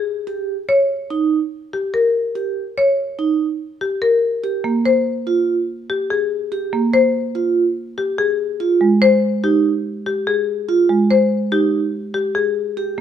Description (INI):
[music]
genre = classical, minimalist pattern music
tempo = 144 BPM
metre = 5/4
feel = straight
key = unclear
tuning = A4 = 440 Hz
[part]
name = marimba with medium hard mallets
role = melody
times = 0.0-12.6 s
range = G4 to Db5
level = -18 LUFS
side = left 4 dB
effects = none
[part]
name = vibraphone with medium mallets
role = arpeggios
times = 0.3-13.0 s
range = Eb4 to G4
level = -18 LUFS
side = right 6 dB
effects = none
[part]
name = marimba with medium mallets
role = accompaniment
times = 4.6-13.0 s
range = Ab3 to Bb3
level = -21 LUFS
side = right 3 dB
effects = none
[sound]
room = light reverb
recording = none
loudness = -16 LUFS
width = side -9 dB against mid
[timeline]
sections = 0.0-13.0 A section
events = none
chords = 0.1 Eb; 4.2 Abmaj7sus2 (rootless); 8.4 Abmaj7(no3)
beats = | 0.06 0.48 0.90 1.31 1.73 | 2.15 2.56 2.98 3.40 3.81 | 4.23 4.65 5.06 5.48 5.90 | 6.31 6.73 7.15 7.56 7.98 | 8.40 8.81 9.23 9.65 10.06 | 10.48 10.90 11.31 11.73 12.15 | 12.56 12.98